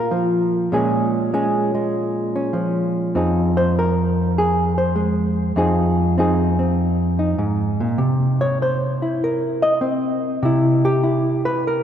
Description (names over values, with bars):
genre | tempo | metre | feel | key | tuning
solo jazz | 99 BPM | 4/4 | swing 68% on 8ths | F minor | A4 = 440 Hz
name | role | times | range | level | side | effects
hollow-body jazz guitar | solo | 0.0-11.8 s | F2 to Eb5 | -17 LUFS | equal | none
room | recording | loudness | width
wet church reverb, RT60 3.4 s | recorded in a church or concert hall | -17 LUFS | side -9 dB against mid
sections
0.0-11.8 A section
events
hollow-body jazz guitar solo 0.0-11.8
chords
0.0 Bbm7; 3.1 Fm7; 8.0 C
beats
0.12 | 0.73 1.33 1.94 2.54 | 3.15 3.75 4.36 4.96 | 5.57 6.18 6.78 7.39 | 7.99 8.60 9.20 9.81 | 10.41 11.02 11.62